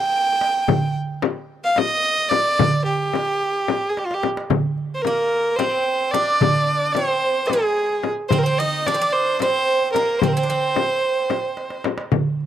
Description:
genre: Turkish makam ensemble.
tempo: 220 BPM (eighths).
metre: 7/8.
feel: straight.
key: C makam nihavent from 4.5 s.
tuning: A4 = 441 Hz.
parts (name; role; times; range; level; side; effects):
clear violin; melody; 0.0-11.8 s; F4 to G5; -20 LUFS; right 2 dB; none.
darbuka; percussion; 0.3-12.5 s; none; -24 LUFS; right 3 dB; none.
frame drum; percussion; 0.7-12.2 s; none; -23 LUFS; left 10 dB; none.
Greek bouzouki; second line; 5.1-11.8 s; G3 to Eb4; -25 LUFS; right 3 dB; none.
room: small room ambience.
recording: dry, close 1970s-style studio recording.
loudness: -18 LUFS.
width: side -10 dB against mid.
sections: 0.0-4.5 A section; 4.5-12.5 B section.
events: drum fill 4.0-4.5, 11.6-12.1.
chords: none.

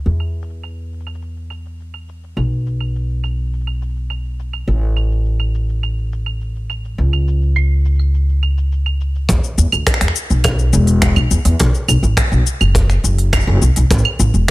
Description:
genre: folktronica.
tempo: 104 BPM.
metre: 4/4.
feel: straight.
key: unclear.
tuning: A4 = 440 Hz.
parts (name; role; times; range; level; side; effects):
upright bass; bass; 0.0-14.4 s; E1 to E2; -15 LUFS; equal; none.
organic electronic drum kit; drums; 0.1-14.5 s; cabasa, claves, finger snaps, hi-hat; -21 LUFS; right 1 dB; low-pass filter on perc, studio reverb, low-pass filter on hats, low-pass filter on snare.
kick drum; drums; 9.3-14.0 s; none; -18 LUFS; equal; studio reverb.
room: small room ambience.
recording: none.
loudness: -14 LUFS.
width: side -19 dB against mid.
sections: 0.0-9.3 A section; 9.3-14.5 B section.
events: none.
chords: none.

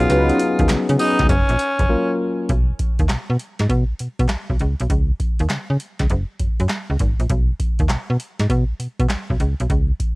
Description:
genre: R&B, new jack swing.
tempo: 100 BPM.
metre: 4/4.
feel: swing 66% on 16ths.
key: unclear.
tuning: A4 = 440 Hz.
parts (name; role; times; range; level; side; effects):
raspy tenor saxophone; melody; 0.0-2.2 s; C#4 to E#4; -21 LUFS; equal; analog delay.
tine electric piano; accompaniment; 0.0-2.5 s; F#3 to A#4; -20 LUFS; left 2 dB; cassette tape.
slap-like FM bass; bass; 0.0-9.9 s; F#1 to C#3; -19 LUFS; equal; none.
booming analog drum machine; drums; 0.0-10.2 s; handclaps, hi-hat, kick drum, snare drum, tambourine; -20 LUFS; equal; cassette tape.
mellow synth brass; stabs; 0.1-1.2 s; C#4 to B4; -23 LUFS; equal; chorus, cassette tape, analog delay.
group handclap; percussion; 0.7-0.9 s; none; -35 LUFS; right 2 dB; none.
room: little or no reverb.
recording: home recording on cassette.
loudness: -17 LUFS.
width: side -24 dB against mid.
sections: 0.0-2.5 A section; 2.5-10.2 B section.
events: break 1.9-2.5.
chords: 0.0 C#9sus4; 1.3 F#maj7; 2.5 N.C..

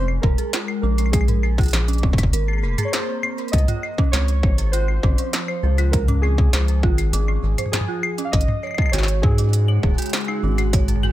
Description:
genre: IDM.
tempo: 100 BPM.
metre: 4/4.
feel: straight.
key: unclear.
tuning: A4 = 440 Hz.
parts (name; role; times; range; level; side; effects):
warbly lo-fi synth keys; melody; 0.0-11.1 s; Ab4 to F5; -29 LUFS; right 1 dB; chorus, ping-pong delay.
glassy FM pad; sustained chords; 0.0-11.1 s; Db3 to Gb4; -31 LUFS; left 1 dB; ensemble chorus, built-in reverb.
dark detuned synth bell; arpeggios; 0.0-11.1 s; C4 to Db5; -30 LUFS; right 3 dB; chorus, phaser, tape echo.
rubbery square bass; bass; 0.0-11.1 s; Eb1 to Ab2; -19 LUFS; equal; none.
industrial drum kit; drums; 0.1-11.1 s; claves, hi-hat, snare drum, toms; -25 LUFS; equal; none.
electronic kick drum; drums; 0.2-10.9 s; none; -19 LUFS; equal; distortion.
room: little or no reverb.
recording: none.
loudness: -17 LUFS.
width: side -14 dB against mid.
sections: 0.0-11.1 A section.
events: none.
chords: 0.0 Bb7sus2; 3.5 Dbmaj7; 8.3 Ab7sus4.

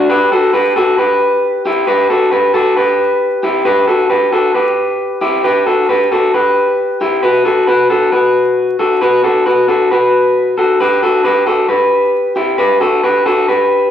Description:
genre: indie pop.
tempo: 134 BPM.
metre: 4/4.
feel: straight.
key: unclear.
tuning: A4 = 440 Hz.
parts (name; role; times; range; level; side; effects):
electric guitar through a small old amp; solo; 0.0-13.9 s; E4 to B4; -10 LUFS; left 1 dB; none.
room: wet large studio reverb, RT60 1.2 s.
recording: band playing live in one room, vinyl crackle.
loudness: -10 LUFS.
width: side -9 dB against mid.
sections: 0.0-3.7 A section; 3.7-13.9 B section.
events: none.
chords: 0.1 Em (rootless); 7.2 F#madd11; 10.8 Em (rootless).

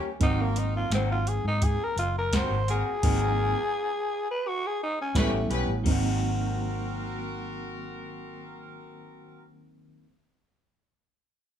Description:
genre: straight-eighth soul blues.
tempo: 85 BPM.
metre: 4/4.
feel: straight.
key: Ab mixolydian.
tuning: A4 = 438 Hz.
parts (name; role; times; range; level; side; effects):
overdriven reed electric piano; accompaniment; 0.0-10.0 s; Gb3 to F4; -34 LUFS; right 4 dB; fast tremolo.
brilliant horn section; sustained chords; 0.0-9.4 s; C4 to B4; -39 LUFS; right 1 dB; none.
electric guitar through a small old amp; stabs; 0.0-10.1 s; Eb3 to G4; -36 LUFS; left 2 dB; harmonic tremolo.
growling tenor saxophone; melody; 0.2-5.5 s; A3 to C5; -28 LUFS; left 1 dB; none.
vintage muted fingered electric bass; bass; 0.2-10.0 s; Gb1 to Ab2; -29 LUFS; left 1 dB; none.
soft vintage rhythm box; drums; 0.2-6.0 s; crash cymbal, hi-hat, kick drum, snare drum; -28 LUFS; equal; overdrive.
room: light reverb.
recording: band playing live in one room.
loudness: -25 LUFS.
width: side -9 dB against mid.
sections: 0.0-5.8 A section; 5.8-8.7 B section.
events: tenor saxophone solo 0.0-5.8.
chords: 0.2 Ab9; 5.1 A9; 5.8 Ab9.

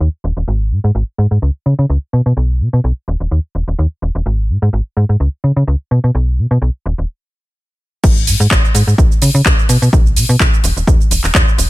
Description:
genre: filtered disco house.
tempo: 127 BPM.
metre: 4/4.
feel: swing 54% on 16ths.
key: G# minor.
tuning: A4 = 440 Hz.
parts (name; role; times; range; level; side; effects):
slap-like FM bass; bass; 0.0-11.7 s; D#1 to C#3; -13 LUFS; equal; sidechain pumping, low-pass filter.
electronic kick drum; drums; 8.0-11.4 s; none; -12 LUFS; equal; studio reverb.
house drum kit; drums; 8.0-11.7 s; cabasa, crash cymbal, handclaps, hi-hat; -16 LUFS; right 1 dB; sidechain pumping on cymbals, low-pass filter on cymbals, studio reverb, sidechain pumping on perc, low-pass filter on perc, sidechain pumping on hats, low-pass filter on hats, low-pass filter on snare.
room: digital ambience.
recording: none.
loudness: -11 LUFS.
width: side -18 dB against mid.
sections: 0.0-8.0 A section; 8.0-11.7 B section.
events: filter sweep on FM bass 0.0-8.0; stop 7.1-8.0; drop 8.0-11.7.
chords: none.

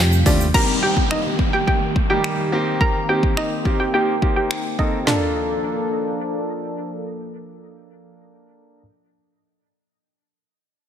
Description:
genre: dance-pop.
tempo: 106 BPM.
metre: 4/4.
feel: straight.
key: Bb major.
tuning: A4 = 440 Hz.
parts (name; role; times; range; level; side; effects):
chorused pulse-width pad; sustained chords; 0.0-8.1 s; C3 to A4; -26 LUFS; equal; sidechain pumping, low-pass filter.
solid FM bass; bass; 0.0-0.5 s; Eb2 to F2; -17 LUFS; equal; sidechain pumping.
egg shaker; percussion; 0.1-0.5 s; none; -31 LUFS; right 12 dB; none.
hollow square pluck; melody; 0.3-6.7 s; D4 to Bb5; -23 LUFS; right 1 dB; chorus, sidechain pumping, low-pass filter, ping-pong delay.
bright concert grand piano; accompaniment; 0.3-8.8 s; G3 to A4; -25 LUFS; left 1 dB; sidechain pumping, low-pass filter.
deep house drum kit; drums; 0.3-5.2 s; crash cymbal, finger snaps, hi-hat, kick drum, snare drum, toms; -21 LUFS; equal; none.
downlifter; sound effects; 0.5-5.1 s; none; -27 LUFS; left 1 dB; none.
room: light reverb, digital ambience.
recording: none.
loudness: -17 LUFS.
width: side -9 dB against mid.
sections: 0.5-5.1 A section; 5.1-7.3 B section.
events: none.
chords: 0.0 Fadd9; 0.5 Eb; 2.5 Cm7; 5.1 Bbmaj7.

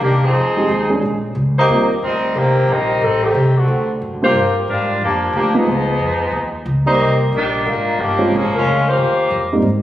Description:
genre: jazz, big band swing.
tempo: 181 BPM.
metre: 4/4.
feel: swing 62% on 8ths.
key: unclear.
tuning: A4 = 440 Hz.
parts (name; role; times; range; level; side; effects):
mellow saxophone section; melody; 0.0-9.5 s; D3 to C5; -16 LUFS; left 1 dB; none.
upright bass; bass; 0.0-9.8 s; F1 to Ab2; -20 LUFS; equal; none.
dark baby grand piano; accompaniment; 0.6-1.9, 4.2-9.6 s; Ab2 to D5; -19 LUFS; right 2 dB; none.
room: wet scoring stage reverb, RT60 1.6 s.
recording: recorded on a phone in the room, club reverb.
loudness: -14 LUFS.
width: side -13 dB against mid.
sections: 0.0-9.7 A section.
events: none.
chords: 0.4 Fm7; 1.0 Bbm; 1.7 Eb6; 3.0 Am7b5; 3.7 D7; 4.3 Gm7; 5.7 Db9; 7.0 Cm9; 8.3 Bbm7; 9.0 Eb69.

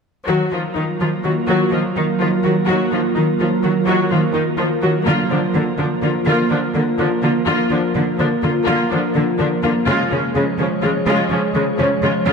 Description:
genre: cinematic.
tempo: 125 BPM.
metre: 5/4.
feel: straight.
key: Eb minor.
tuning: A4 = 441 Hz.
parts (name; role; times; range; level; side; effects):
clear symphonic viola section; accompaniment; 0.3-12.3 s; Db3 to Gb4; -20 LUFS; left 2 dB; none.
glassy FM pad; sustained chords; 0.7-12.3 s; F3 to Db5; -20 LUFS; right 1 dB; ensemble chorus, built-in reverb.
clear symphonic cello section; bass; 0.3-12.3 s; Db3 to Eb3; -21 LUFS; equal; none.
room: wet concert hall reverb, RT60 2.0 s.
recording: none.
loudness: -15 LUFS.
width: side -5 dB against mid.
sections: 0.3-12.3 A section.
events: build-up 0.3-12.3.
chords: 0.3 Ebmadd9; 5.1 Bb/D; 9.9 Db.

